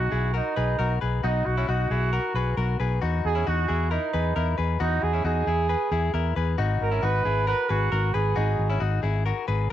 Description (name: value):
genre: jangly indie pop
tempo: 135 BPM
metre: 4/4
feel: straight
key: unclear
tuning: A4 = 440 Hz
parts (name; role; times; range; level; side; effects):
- warm trumpet; melody; 0.0-8.8 s; D#4 to B4; -28 LUFS; right 6 dB; cassette tape
- direct-recorded clean electric guitar; arpeggios; 0.0-9.7 s; C#4 to B4; -28 LUFS; left 8 dB; cassette tape
- fingered electric bass; bass; 0.0-9.7 s; G#1 to E2; -25 LUFS; equal; none
room: moderate spring reverb, RT60 1.6 s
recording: home recording on cassette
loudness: -22 LUFS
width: side -12 dB against mid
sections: 0.0-9.7 A section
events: none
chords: 0.0 B6; 3.0 Emaj7; 6.6 G#m7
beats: 0.35 0.79 | 1.24 1.68 2.13 2.57 | 3.02 3.47 3.91 4.36 | 4.80 5.25 5.70 6.14 | 6.59 7.03 7.48 7.92 | 8.37 8.82 9.26